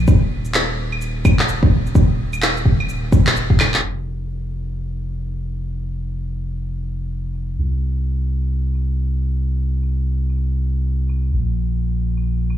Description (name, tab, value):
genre	future garage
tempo	128 BPM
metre	4/4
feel	swing 61% on 16ths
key	unclear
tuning	A4 = 440 Hz
part	soft dub sub bass	bass	0.0-12.6 s	Eb1 to C2	-21 LUFS	equal	none
part	electronic kick drum	drums	0.1-3.6 s	none	-14 LUFS	equal	none
part	electronic shaker, handclaps and claves	drums	0.1-12.6 s	none	-21 LUFS	equal	low-pass filter on perc, low-pass filter on snare
room	little or no reverb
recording	played on a big sound system in a bare room, large studio reverb, low-pass filter, small room ambience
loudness	-18 LUFS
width	side -11 dB against mid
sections	0.0-3.8 A section; 3.8-12.6 B section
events	drum fill 3.6; filter sweep on drum 3.8-12.6; filter sweep 3.8-12.6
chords	none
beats	| 0.08 0.55 1.01 1.48 | 1.95 2.42 2.89 3.36 | 3.83 4.30 4.76 5.23 | 5.70 6.17 6.64 7.11 | 7.58 8.05 8.52 8.98 | 9.45 9.92 10.39 10.86 | 11.33 11.80 12.27